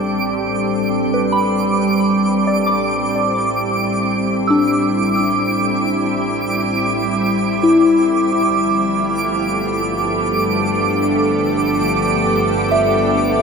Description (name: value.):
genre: ambient.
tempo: free time.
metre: none.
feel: none.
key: A minor.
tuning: A4 = 440 Hz.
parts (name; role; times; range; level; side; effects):
soft additive organ-like pad; sustained chords; 0.0-13.4 s; F3 to A4; -18 LUFS; equal; ensemble chorus, built-in reverb.
soft synth bell; arpeggios; 0.0-13.4 s; D4 to E6; -19 LUFS; left 2 dB; chorus, phaser, ping-pong delay.
warm studio double bass section; bass; 0.0-13.4 s; G1 to A1; -30 LUFS; right 1 dB; none.
twinkling granular texture; texture; 0.0-13.4 s; D6; -21 LUFS; right 4 dB; built-in reverb.
bowed-like drone; drone; 9.2-13.4 s; A3 to A4; -22 LUFS; equal; built-in reverb.
room: wet lush hall reverb, RT60 2.7 s.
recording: none.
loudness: -15 LUFS.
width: side -5 dB against mid.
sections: 0.0-13.4 A section.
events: fade-in on double bass section 0.0-13.4.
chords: 0.0 Am11; 8.5 G7.